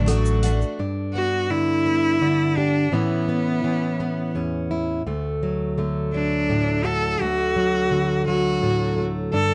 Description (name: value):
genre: indie folk with a building arrangement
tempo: 56 BPM (dotted quarters)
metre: 6/8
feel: straight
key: D major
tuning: A4 = 439 Hz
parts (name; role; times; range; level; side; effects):
- bright cello; melody; 0.0-9.5 s; B3 to A4; -25 LUFS; equal; none
- picked twelve-string acoustic guitar; accompaniment; 0.0-0.8 s; F#3 to F#4; -28 LUFS; equal; none
- celesta; arpeggios; 0.0-0.8 s; A4; -33 LUFS; equal; analog delay
- fingered electric bass; bass; 0.0-0.6 s; A1; -22 LUFS; equal; none
- hi-hat; drums; 0.1-0.6 s; none; -37 LUFS; equal; none
- tube shaker; percussion; 0.3-0.7 s; none; -42 LUFS; equal; none
- fingerpicked plugged-in steel-string acoustic guitar; accompaniment; 0.8-9.5 s; D2 to G4; -25 LUFS; equal; none
room: moderate studio reverb, RT60 0.8 s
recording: dark, warm production, nothing above 10.4 kHz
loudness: -22 LUFS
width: mono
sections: 0.8-9.5 A section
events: none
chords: 0.0 D; 0.8 G; 2.9 Aadd9; 5.1 D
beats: | 0.79 1.85 | 2.92 3.99 | 5.06 6.12 | 7.19 8.26 | 9.33